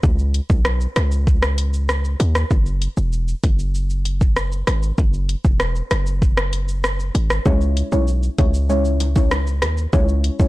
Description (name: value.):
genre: dancehall.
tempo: 97 BPM.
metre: 4/4.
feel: straight.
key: unclear.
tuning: A4 = 440 Hz.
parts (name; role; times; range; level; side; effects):
hard-hitting 808-style bass; bass; 0.0-10.5 s; E1 to D#2; -19 LUFS; equal; none.
afro-pop drum kit; drums; 0.0-10.5 s; hi-hat, kick drum, rim click, shaker; -19 LUFS; equal; vintage 12-bit sampler grit, soft clipping on snare.
deep mellow chord stab; accompaniment; 7.5-10.5 s; G#3 to C#5; -23 LUFS; left 2 dB; chorus.
bongos; percussion; 7.5-10.1 s; none; -34 LUFS; right 5 dB; none.
room: little or no reverb.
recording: blown-out, overdriven recording, overdrive.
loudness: -16 LUFS.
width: side -18 dB against mid.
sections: 0.0-10.5 A section.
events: none.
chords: 0.0 Bsus2; 2.5 Esus2; 7.5 C#m.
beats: | 0.03 0.65 1.27 1.89 | 2.51 3.13 3.75 4.36 | 4.98 5.60 6.22 6.84 | 7.46 8.07 8.69 9.31 | 9.93.